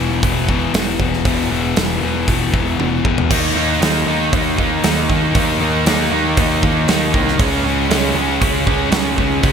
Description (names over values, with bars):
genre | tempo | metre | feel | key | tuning
hard rock | 117 BPM | 4/4 | straight | unclear | A4 = 440 Hz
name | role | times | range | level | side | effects
overdriven electric guitar | riff | 0.0-9.5 s | E2 to D#4 | -19 LUFS | left 9 dB | none
sludgy distorted guitar | riff | 0.0-9.5 s | E2 to D#4 | -23 LUFS | right 2 dB | overdrive
growling picked electric bass | bass | 0.0-9.5 s | E1 to D#2 | -22 LUFS | right 1 dB | overdrive
big rock drum kit | drums | 0.2-9.5 s | crash cymbal, hi-hat, kick drum, snare drum, toms | -19 LUFS | right 1 dB | gated reverb
overdriven semi-hollow guitar | riff | 3.3-9.5 s | C#3 to D#4 | -20 LUFS | right 14 dB | none
room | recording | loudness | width
light reverb, small room reverb | bright 1980s-style digital production | -14 LUFS | side -7 dB against mid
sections
0.0-9.5 A section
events
drum fill 2.8-3.3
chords
0.0 E5; 3.3 D#5; 7.4 C#5